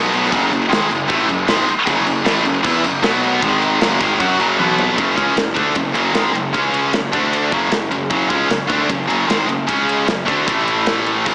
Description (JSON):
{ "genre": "heavy metal", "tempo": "154 BPM", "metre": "4/4", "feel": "straight", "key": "F# minor", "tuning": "A4 = 440 Hz", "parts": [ { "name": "heavy high-gain guitar", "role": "riff", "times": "0.0-11.3 s", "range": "F#2 to F#4", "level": "-18 LUFS", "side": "equal", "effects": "distortion, slapback echo" }, { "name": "fuzz picked electric bass", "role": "bass", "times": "0.0-11.3 s", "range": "F#1 to F#2", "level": "-25 LUFS", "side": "equal", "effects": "overdrive" }, { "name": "modern studio drum kit", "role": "drums", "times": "0.1-11.3 s", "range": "crash cymbal, kick drum, ride cymbal, snare drum, toms", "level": "-24 LUFS", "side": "equal", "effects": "none" } ], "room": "moderate lush hall reverb, RT60 1.7 s, small room ambience", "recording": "big arena sound, small speaker sound", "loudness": "-17 LUFS", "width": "mono", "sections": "0.0-5.0 A section; 5.0-11.3 B section", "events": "drum fill 4.6-5.0", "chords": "0.3 F#m; 3.0 B5; 3.4 G#5; 3.8 F#5; 4.6 B5; 5.0 F#m; 6.5 C#5; 6.9 F#5; 7.1 D5; 7.5 F#5; 9.7 C#5; 10.1 F#m; 10.5 A5" }